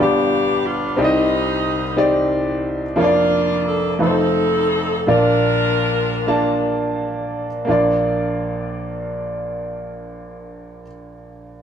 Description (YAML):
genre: gospel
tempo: 39-60 BPM (dotted quarters)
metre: 6/8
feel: straight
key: Bb major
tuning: A4 = 440 Hz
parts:
  - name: bright saxophone section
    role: melody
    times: 0.0-6.7 s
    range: G3 to Bb4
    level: -20 LUFS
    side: left 2 dB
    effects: none
  - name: clear baby grand piano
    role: accompaniment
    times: 0.0-11.6 s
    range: F1 to A5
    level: -18 LUFS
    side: equal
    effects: none
room: moderate studio reverb, RT60 0.8 s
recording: band playing live in one room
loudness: -16 LUFS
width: side -8 dB against mid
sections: 0.0-7.7 A section; 7.7-11.6 B section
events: slowing down 3.0-7.7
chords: 0.0 G7; 1.0 Cm; 3.0 Bb/F; 4.0 F7; 5.1 Bb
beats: | 0.97 1.97 | 2.97 3.99 | 5.07 6.28 | 7.68 9.22 | 10.77